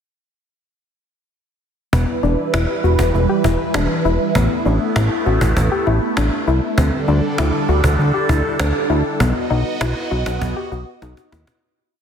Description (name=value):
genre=synth-pop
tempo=99 BPM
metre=4/4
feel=straight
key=E minor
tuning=A4 = 440 Hz
part: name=phased analog pad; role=sustained chords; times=1.9-11.6 s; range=D3 to D#5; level=-21 LUFS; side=right 2 dB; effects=phaser, chorus
part: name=soft round pluck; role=arpeggios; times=1.9-11.6 s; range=B3 to G4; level=-22 LUFS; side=left 6 dB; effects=chorus, ping-pong delay
part: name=fat analog bass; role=bass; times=1.9-11.5 s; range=E1 to D#2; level=-18 LUFS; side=right 1 dB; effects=none
part: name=cajon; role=drums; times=1.9-11.6 s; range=none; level=-24 LUFS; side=right 1 dB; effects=none
room=moderate lush hall reverb, RT60 2.3 s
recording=dense, heavily limited modern master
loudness=-15 LUFS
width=side -8 dB against mid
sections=1.9-11.6 verse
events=fade-out 9.2-11.6; drum fill 11.0-11.6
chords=1.9 Em; 4.4 Asus2; 6.8 Dsus4; 9.2 B